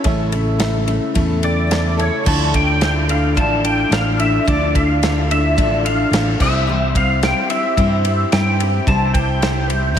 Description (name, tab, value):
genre	folk rock and heartland rock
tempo	109 BPM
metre	4/4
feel	straight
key	D minor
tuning	A4 = 440 Hz
part	clear upright piano	accompaniment	0.0-2.2 s	A4 to A5	-31 LUFS	right 2 dB	wide subtle chorus
part	picked steel-string acoustic guitar	accompaniment	0.0-10.0 s	A2 to C5	-21 LUFS	left 3 dB	none
part	tonewheel organ	sustained chords	0.0-10.0 s	C#3 to E5	-26 LUFS	right 1 dB	slow rotary speaker, overdrive, chorus vibrato
part	fingered electric bass	bass	0.0-10.0 s	A1 to G2	-19 LUFS	right 1 dB	none
part	damped 70s drum kit	drums	0.0-10.0 s	crash cymbal, kick drum, ride cymbal, snare drum	-21 LUFS	equal	none
part	pedal steel guitar	melody	1.4-10.0 s	C#5 to A5	-20 LUFS	equal	ensemble chorus, diffuse ambient delay
room	moderate lush hall reverb, RT60 2.2 s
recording	dreamy mix soaked in reverb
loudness	-14 LUFS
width	side -9 dB against mid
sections	0.0-2.3 A section; 2.3-10.0 B section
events	upright piano fill 1.2-2.3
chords	0.0 A; 2.3 Dmadd9; 6.4 C